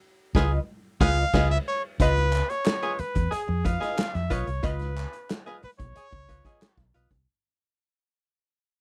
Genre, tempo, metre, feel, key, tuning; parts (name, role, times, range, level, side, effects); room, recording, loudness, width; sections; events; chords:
funk; 91 BPM; 4/4; straight; Db mixolydian; A4 = 440 Hz
raspy tenor saxophone; second line; 0.3-6.9 s; Ab4; -35 LUFS; equal
vintage muted fingered electric bass; bass; 0.3-7.2 s; Cb2 to F2; -29 LUFS; equal
vintage drum kit; drums; 0.3-7.3 s; crash cymbal, hi-hat, kick drum, snare drum; -29 LUFS; equal
archtop guitar, miked and amplified; accompaniment; 0.4-7.1 s; F4 to Eb5; -34 LUFS; equal; wah
clear trumpet; melody; 1.0-6.7 s; Ab4 to F5; -32 LUFS; equal
group handclap; percussion; 2.3-6.8 s; -42 LUFS; equal
little or no reverb; -26 LUFS; mono
0.0-2.0 A section; 2.0-7.3 B section
band accent 0.0-2.0; fade-out 2.0-7.3
0.0 Db9